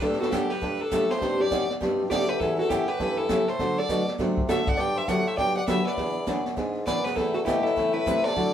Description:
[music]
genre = country, western swing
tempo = 202 BPM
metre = 4/4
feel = swing 63% on 8ths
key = G major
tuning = A4 = 440 Hz
[part]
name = clear fiddle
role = melody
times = 0.0-8.5 s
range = G4 to G5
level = -28 LUFS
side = equal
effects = none
[part]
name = hollow-body jazz guitar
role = second line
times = 0.0-8.5 s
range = D4 to D5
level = -30 LUFS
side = left 2 dB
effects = none
[part]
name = picked steel-string acoustic guitar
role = accompaniment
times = 0.0-8.5 s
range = C3 to D5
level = -29 LUFS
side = equal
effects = none
[part]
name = mellow bassoon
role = bass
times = 0.0-8.5 s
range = D2 to D3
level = -30 LUFS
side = left 1 dB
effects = none
[part]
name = jazz brush drum kit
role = drums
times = 0.0-8.5 s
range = brushed snare drum, hi-hat, kick drum, snare drum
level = -32 LUFS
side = right 1 dB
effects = none
[sound]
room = wet studio reverb, RT60 0.5 s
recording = band playing live in one room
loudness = -23 LUFS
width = side -9 dB against mid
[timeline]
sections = 0.0-8.5 A section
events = none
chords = 0.0 Gsus2; 1.2 Cmadd9; 2.4 A7; 3.6 D; 4.8 Gmaj7; 6.0 E7; 7.2 Amadd9/E

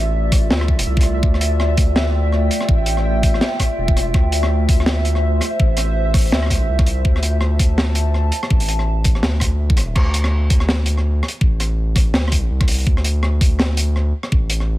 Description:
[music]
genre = half-time drum and bass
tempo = 165 BPM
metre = 4/4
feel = swing 57% on 16ths, half-time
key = D minor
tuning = A4 = 440 Hz
[part]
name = dark analog pad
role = sustained chords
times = 0.0-10.0 s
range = A3 to A5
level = -25 LUFS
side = equal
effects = chorus, phaser, vintage 12-bit sampler grit, sidechain pumping
[part]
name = saturated sub bass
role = bass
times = 0.0-14.8 s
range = E1 to D2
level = -18 LUFS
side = equal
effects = tube saturation
[part]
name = pulsing gated texture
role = texture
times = 0.0-10.0 s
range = E5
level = -28 LUFS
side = equal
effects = chorus, built-in reverb
[part]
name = crunchy breakbeat drum kit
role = drums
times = 0.3-14.7 s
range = crash cymbal, hi-hat, rim click, snare drum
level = -22 LUFS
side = equal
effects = none
[part]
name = electronic kick drum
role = drums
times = 0.3-14.4 s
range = none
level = -16 LUFS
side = equal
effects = none
[sound]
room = studio reverb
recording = none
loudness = -15 LUFS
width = side -16 dB against mid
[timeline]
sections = 0.0-10.0 A section; 10.0-14.8 A section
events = drop 0.0-10.0, 10.0-14.8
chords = 0.0 Dmadd9; 10.0 D5

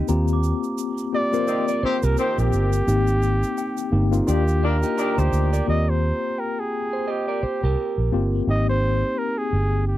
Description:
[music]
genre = lush 1970s-style soul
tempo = 86 BPM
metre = 4/4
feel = swing 58% on 16ths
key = Eb major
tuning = A4 = 439 Hz
[part]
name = mellow tine electric piano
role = accompaniment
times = 0.0-10.0 s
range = Bb3 to G5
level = -25 LUFS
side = left 4 dB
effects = medium stereo tremolo
[part]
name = electric guitar through a small old amp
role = riff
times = 0.0-8.4 s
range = D4 to Eb5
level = -28 LUFS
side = right 8 dB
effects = none
[part]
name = vintage muted fingered electric bass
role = bass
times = 0.1-10.0 s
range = G1 to Eb2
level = -21 LUFS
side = right 1 dB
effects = none
[part]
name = egg shaker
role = percussion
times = 0.1-5.7 s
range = none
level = -41 LUFS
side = right 20 dB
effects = none
[part]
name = glockenspiel with soft plastic mallets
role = texture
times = 0.1-7.4 s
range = G5 to D6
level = -39 LUFS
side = equal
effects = none
[part]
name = warm flugelhorn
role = melody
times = 1.1-10.0 s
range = G4 to Eb5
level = -26 LUFS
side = right 1 dB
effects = none
[part]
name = warm horn section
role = stabs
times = 1.5-5.5 s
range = Eb3 to G4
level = -28 LUFS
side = left 3 dB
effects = none
[sound]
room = little or no reverb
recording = dry, close 1970s-style studio recording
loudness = -20 LUFS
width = side -14 dB against mid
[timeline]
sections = 0.0-5.7 A section; 5.7-10.0 B section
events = flugelhorn solo 0.0-5.7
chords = 0.1 Eb6; 2.9 Abmaj7; 4.3 Ebmaj7; 5.7 Eb6; 8.5 Abmaj7

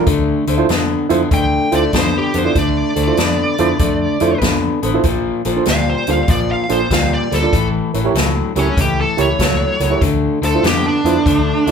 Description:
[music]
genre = electric blues shuffle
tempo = 96 BPM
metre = 4/4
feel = swing 66% on 8ths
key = D minor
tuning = A4 = 441 Hz
[part]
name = reed electric piano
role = accompaniment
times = 0.0-11.7 s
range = D4 to D5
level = -19 LUFS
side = right 7 dB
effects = overdrive, fast tremolo
[part]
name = electric guitar at the edge of break-up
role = riff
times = 0.0-11.7 s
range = A2 to B3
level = -18 LUFS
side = left 4 dB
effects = none
[part]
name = vintage muted fingered electric bass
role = bass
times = 0.1-11.7 s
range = A1 to F2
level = -21 LUFS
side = equal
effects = none
[part]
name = swinging big-band drum kit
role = drums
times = 0.1-11.7 s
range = hi-hat, kick drum, snare drum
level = -19 LUFS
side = equal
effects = none
[part]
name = smooth overdriven lead guitar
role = melody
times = 1.3-11.7 s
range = C#4 to G5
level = -19 LUFS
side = right 2 dB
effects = none
[sound]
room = light reverb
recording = band playing live in one room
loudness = -13 LUFS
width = side -6 dB against mid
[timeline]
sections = 0.0-11.7 A section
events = none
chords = 0.1 Dm7; 5.0 Bbmaj7; 7.5 A7b9; 10.0 Dm7

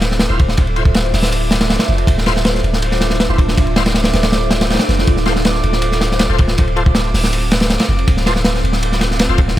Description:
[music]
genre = drum and bass, jungle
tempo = 160 BPM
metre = 4/4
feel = straight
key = D minor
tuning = A4 = 442 Hz
[part]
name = long sustained 808-style bass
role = bass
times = 0.0-9.6 s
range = D1 to F1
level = -18 LUFS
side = equal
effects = tube saturation
[part]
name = crunchy breakbeat drum kit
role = drums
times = 0.0-9.6 s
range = hi-hat, kick drum, ride cymbal, snare drum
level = -15 LUFS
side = equal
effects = none
[part]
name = drifting glass-harmonics texture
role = texture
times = 0.0-9.6 s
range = D6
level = -28 LUFS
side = right 3 dB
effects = chorus, built-in reverb
[part]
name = bright tonewheel organ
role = stabs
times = 0.3-9.4 s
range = E4 to C5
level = -24 LUFS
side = left 4 dB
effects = overdrive, chorus vibrato, slow rotary speaker, vintage 12-bit sampler grit, dub echo
[sound]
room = small room ambience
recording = none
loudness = -12 LUFS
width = side -13 dB against mid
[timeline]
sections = 0.0-9.6 A section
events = none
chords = 0.0 Dm7; 5.1 F/D

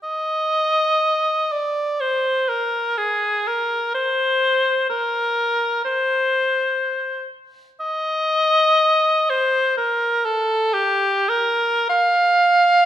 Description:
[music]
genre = classical, free, expressive piece for unaccompanied cor anglais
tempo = 49-65 BPM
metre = 4/4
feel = rubato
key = unclear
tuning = A4 = 442 Hz
[part]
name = clear cor anglais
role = solo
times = 0.0-12.9 s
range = G4 to F5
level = -17 LUFS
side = equal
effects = none
[sound]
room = moderate recital hall reverb, RT60 1.5 s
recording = minimal, uncompressed stereo recording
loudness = -17 LUFS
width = side -11 dB against mid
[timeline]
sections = 0.0-12.9 A section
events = none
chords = none

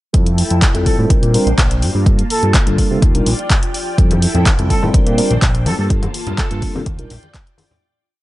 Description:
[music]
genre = filtered disco house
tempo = 125 BPM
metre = 4/4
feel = straight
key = F major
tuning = A4 = 440 Hz
[part]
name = mellow tine electric piano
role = accompaniment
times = 0.1-7.1 s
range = G3 to Bb4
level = -20 LUFS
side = equal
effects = slow stereo tremolo, phaser, sidechain pumping, low-pass filter
[part]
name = string machine, full ensemble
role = sustained chords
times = 0.1-7.8 s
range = Bb3 to A5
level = -25 LUFS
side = equal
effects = ensemble chorus, sidechain pumping, low-pass filter
[part]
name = fat analog bass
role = bass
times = 0.1-7.2 s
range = F1 to C3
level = -17 LUFS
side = equal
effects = sidechain pumping, low-pass filter
[part]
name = electronic kick drum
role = drums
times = 0.1-7.4 s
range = none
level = -14 LUFS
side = equal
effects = none
[part]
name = punchy analog drum machine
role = drums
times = 0.1-7.7 s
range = handclaps, hi-hat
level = -21 LUFS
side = equal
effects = sidechain pumping on hats
[part]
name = clear trumpet section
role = melody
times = 0.9-6.7 s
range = A4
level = -23 LUFS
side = right 1 dB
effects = sidechain pumping, low-pass filter
[part]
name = tambourine and congas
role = percussion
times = 4.0-7.8 s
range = none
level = -26 LUFS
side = left 2 dB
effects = sidechain pumping on perc, low-pass filter on perc
[sound]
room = little or no reverb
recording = nothing above 10.9 kHz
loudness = -12 LUFS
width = side -17 dB against mid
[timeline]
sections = 0.1-7.8 groove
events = filter sweep 0.1-7.8; fade-out 5.3-7.8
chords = 0.1 Fmaj9; 1.1 Bb69; 1.8 Gm9; 3.0 Ebmaj9; 4.0 Fmaj9; 4.9 Bb69; 5.7 Gm9; 6.9 Ebmaj9

